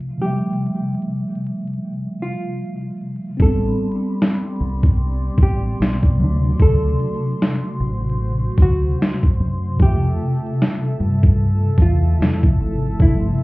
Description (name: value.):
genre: lo-fi hip hop.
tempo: 75 BPM.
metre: 4/4.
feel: swing 59% on 16ths.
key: A minor.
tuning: A4 = 439 Hz.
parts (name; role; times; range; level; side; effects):
mellow tine electric piano; accompaniment; 0.0-13.4 s; C3 to E5; -22 LUFS; equal; medium stereo tremolo, low-pass filter.
hollow-body jazz guitar; melody; 0.2-13.4 s; E4 to A4; -27 LUFS; equal; low-pass filter, tape echo.
hollow soft pad; sustained chords; 3.4-13.4 s; F#4 to C6; -34 LUFS; equal; chorus.
deep dub fingered electric bass; bass; 3.4-13.3 s; G1 to G2; -19 LUFS; equal; none.
boom bap sampler-style drum kit; drums; 3.4-13.2 s; kick drum, snare drum; -15 LUFS; equal; none.
room: light reverb.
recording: heard muffled through a wall, club reverb, vinyl crackle, EQ.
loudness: -16 LUFS.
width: side -21 dB against mid.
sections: 0.0-3.4 A section; 3.4-13.4 B section.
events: filter sweep 0.0-3.4; hi-hats muted 3.4-13.4.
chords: 0.2 G13sus4; 3.4 Am11; 6.2 D7; 9.8 Fmaj7.